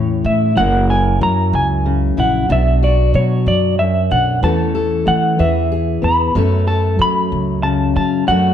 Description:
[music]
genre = acoustic folk duo or small band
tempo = 62 BPM (dotted quarters)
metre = 6/8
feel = straight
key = unclear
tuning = A4 = 440 Hz
[part]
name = semi-hollow electric guitar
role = melody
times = 0.0-8.5 s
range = C#5 to B5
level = -18 LUFS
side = equal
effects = tremolo
[part]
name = fingerpicked steel-string acoustic guitar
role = accompaniment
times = 0.0-8.5 s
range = F#2 to A#4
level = -18 LUFS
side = left 3 dB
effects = none
[part]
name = upright bass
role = bass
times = 0.0-8.5 s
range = F#1 to F#3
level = -17 LUFS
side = right 1 dB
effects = none
[sound]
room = moderate large studio reverb, RT60 1.2 s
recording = dark, warm production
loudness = -13 LUFS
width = side -9 dB against mid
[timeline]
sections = 0.0-8.5 A section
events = none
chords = 0.0 A; 0.6 F#7; 2.5 Bm; 4.4 A/E; 5.4 E; 6.4 F#m

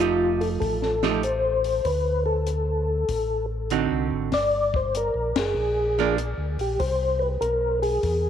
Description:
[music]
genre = soul jazz organ trio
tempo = 97 BPM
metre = 4/4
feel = swing 67% on 8ths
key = F mixolydian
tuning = A4 = 441 Hz
[part]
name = percussive tonewheel organ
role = melody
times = 0.0-8.3 s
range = F4 to D5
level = -24 LUFS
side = left 2 dB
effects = slow rotary speaker, chorus vibrato, tape echo
[part]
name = archtop guitar, miked and amplified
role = accompaniment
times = 0.0-6.2 s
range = D3 to G4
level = -26 LUFS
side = right 11 dB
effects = none
[part]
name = mellow tonewheel organ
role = bass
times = 0.0-8.3 s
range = F1 to E2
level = -28 LUFS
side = left 1 dB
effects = chorus vibrato, slow rotary speaker
[part]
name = compact cocktail drum kit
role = drums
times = 0.4-8.2 s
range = hi-hat, kick drum, ride cymbal, snare drum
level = -32 LUFS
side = left 4 dB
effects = none
[sound]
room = wet spring reverb, RT60 1.9 s, studio reverb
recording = 1960s-style stereo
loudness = -22 LUFS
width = side -9 dB against mid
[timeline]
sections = 0.0-8.3 A section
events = band accent 5.3-5.6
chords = 0.0 F9; 1.8 D7b9; 4.3 Gm; 6.8 C7

